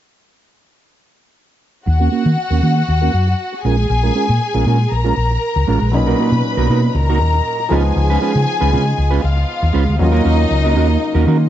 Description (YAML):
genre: disco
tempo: 118 BPM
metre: 4/4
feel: straight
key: Eb minor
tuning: A4 = 441 Hz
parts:
  - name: clear studio string section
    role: second line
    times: 1.9-11.5 s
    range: Eb4 to B5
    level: -20 LUFS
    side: left 3 dB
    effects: none
  - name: clean electric guitar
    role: accompaniment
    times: 1.9-11.4 s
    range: Ab3 to Cb5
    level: -20 LUFS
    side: right 7 dB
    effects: low-pass filter
  - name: hollow-body short-scale fingered electric bass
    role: bass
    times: 1.9-11.5 s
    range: A1 to Eb3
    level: -15 LUFS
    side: equal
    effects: none
  - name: warm grand piano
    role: accompaniment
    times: 5.9-11.5 s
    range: A#2 to F4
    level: -22 LUFS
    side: left 2 dB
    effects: low-pass filter
  - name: dark French horn section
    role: sustained chords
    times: 10.0-11.5 s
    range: Db3 to Eb4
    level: -23 LUFS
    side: left 4 dB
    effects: none
room: light reverb, small room reverb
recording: dark, warm production, nothing above 7.8 kHz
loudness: -13 LUFS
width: side -11 dB against mid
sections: 1.9-10.0 A section; 10.0-11.5 B section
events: filter sweep 1.9-10.0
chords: 1.9 Ebm7; 3.6 Bbm7; 5.9 Bmaj7; 7.7 Db7; 10.0 Ebm7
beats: | 1.87 2.38 2.88 3.39 | 3.90 4.41 4.92 5.42 | 5.93 6.44 6.95 7.46 | 7.97 8.47 8.98 9.49 | 10.00 10.51 11.02